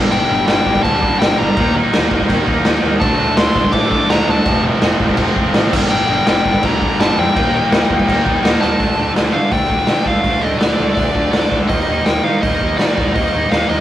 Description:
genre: punk rock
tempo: 166 BPM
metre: 4/4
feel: straight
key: unclear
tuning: A4 = 439 Hz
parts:
  - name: overdriven electric guitar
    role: riff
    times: 0.0-13.8 s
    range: F2 to Eb4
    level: -22 LUFS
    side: left 4 dB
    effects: none
  - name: tight distorted guitar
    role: riff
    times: 0.0-13.8 s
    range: F2 to Eb4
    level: -21 LUFS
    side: right 4 dB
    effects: distortion
  - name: fuzz picked electric bass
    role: bass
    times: 0.0-13.8 s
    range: F1 to Eb3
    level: -22 LUFS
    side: equal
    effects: overdrive
  - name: nasal lead guitar with a parked wah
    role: melody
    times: 0.1-13.8 s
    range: D5 to D6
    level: -19 LUFS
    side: left 2 dB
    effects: overdrive
  - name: raw garage drum kit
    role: drums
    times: 0.1-13.6 s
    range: crash cymbal, hi-hat, kick drum, snare drum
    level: -16 LUFS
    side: equal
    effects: none
room: light reverb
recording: rough rehearsal-room recording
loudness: -12 LUFS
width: side -12 dB against mid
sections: 0.0-8.8 A section; 8.8-13.8 B section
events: drum fill 8.6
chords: 0.0 Gm; 1.6 Eb; 3.0 Dm; 4.5 F; 5.7 Gm; 7.3 Eb; 8.8 Dm; 11.7 Eb

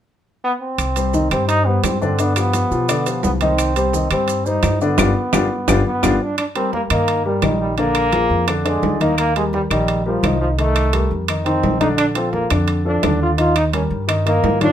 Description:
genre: latin, salsa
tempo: 172 BPM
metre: 4/4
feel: straight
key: C harmonic minor, C minor from 6.4 s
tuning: A4 = 440 Hz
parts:
  - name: bright trombone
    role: melody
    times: 0.4-14.7 s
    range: F3 to F4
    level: -21 LUFS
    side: equal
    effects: none
  - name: upright bass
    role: bass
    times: 0.8-14.7 s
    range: G1 to B2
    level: -21 LUFS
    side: equal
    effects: none
  - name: claves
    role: percussion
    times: 0.8-14.3 s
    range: none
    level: -29 LUFS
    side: left 6 dB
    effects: none
  - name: congas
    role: percussion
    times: 0.8-14.7 s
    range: none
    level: -26 LUFS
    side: left 4 dB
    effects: none
  - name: maracas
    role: percussion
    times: 0.8-6.1 s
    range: none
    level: -32 LUFS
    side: right 8 dB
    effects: none
  - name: timbales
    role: percussion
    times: 0.8-14.7 s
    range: none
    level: -24 LUFS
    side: right 8 dB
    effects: none
  - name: warm baby grand piano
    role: accompaniment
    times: 1.0-14.7 s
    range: D3 to Eb5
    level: -20 LUFS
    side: left 2 dB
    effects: none
room: moderate studio reverb, RT60 0.6 s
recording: minimal, uncompressed stereo recording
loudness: -15 LUFS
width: side -10 dB against mid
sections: 0.8-6.4 A section; 6.4-14.7 B section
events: drum fill 5.0-6.4; band accent 5.0-6.4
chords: 0.0 N.C.; 0.8 Cm; 2.2 G7; 3.6 Cm; 5.0 G7; 6.4 Cm7 (rootless); 7.8 Bb7; 9.2 Eb69; 10.6 Cm7; 11.3 F5; 12.0 Bbmaj7; 13.4 Eb

